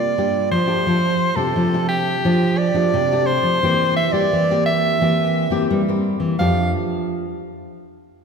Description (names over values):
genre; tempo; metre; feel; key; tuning
samba and choro; 87 BPM; 4/4; straight; F major; A4 = 440 Hz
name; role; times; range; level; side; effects
clear soprano saxophone; melody; 0.0-6.7 s; G4 to F5; -20 LUFS; right 2 dB; none
nylon-string guitar; accompaniment; 0.0-7.2 s; G2 to G4; -24 LUFS; left 3 dB; none
nylon-string guitar; bass; 0.2-6.7 s; F2 to G3; -21 LUFS; right 1 dB; none
room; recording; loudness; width
wet concert hall reverb, RT60 2.3 s; recorded in a church or concert hall; -16 LUFS; side -5 dB against mid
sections
0.9-6.4 A section; 6.4-8.2 B section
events
none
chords
0.0 C7sus4; 0.9 F69; 3.6 C7/E; 6.4 F69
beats
0.18 | 0.87 1.56 2.25 2.94 | 3.63 4.33 5.01 5.70 | 6.39 7.08